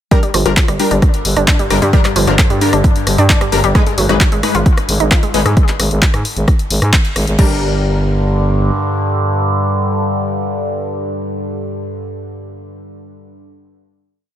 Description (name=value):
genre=driving peak-time techno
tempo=132 BPM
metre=4/4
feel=straight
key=G minor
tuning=A4 = 440 Hz
part: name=analog pluck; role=riff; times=0.1-7.6 s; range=F3 to F4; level=-20 LUFS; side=equal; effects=chorus, sidechain pumping, ping-pong delay
part: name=rave stab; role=stabs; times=0.1-12.3 s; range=G3 to Cb5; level=-21 LUFS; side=left 3 dB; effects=chorus, built-in reverb, sidechain pumping, ping-pong delay
part: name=overtone-sweeping drone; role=drone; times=1.0-11.8 s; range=G2 to D3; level=-20 LUFS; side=equal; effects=chorus, built-in reverb, sidechain pumping
part: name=electronic kick drum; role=drums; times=0.1-7.5 s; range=none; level=-12 LUFS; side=equal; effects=overdrive
part: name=punchy analog drum machine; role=drums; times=0.1-7.5 s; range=crash cymbal, handclaps, hi-hat, rim click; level=-18 LUFS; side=left 1 dB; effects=overdrive, sidechain pumping on hats, sidechain pumping on cymbals
part: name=growling FM bass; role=bass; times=0.3-8.7 s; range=G1 to Ab2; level=-15 LUFS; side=equal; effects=sidechain pumping
room=digital ambience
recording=none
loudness=-11 LUFS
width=side -11 dB against mid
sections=0.1-7.4 drop; 7.4-11.0 final chord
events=drop 0.1-7.4; band accent 6.9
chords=0.1 Gm; 3.8 Abm; 7.4 Gm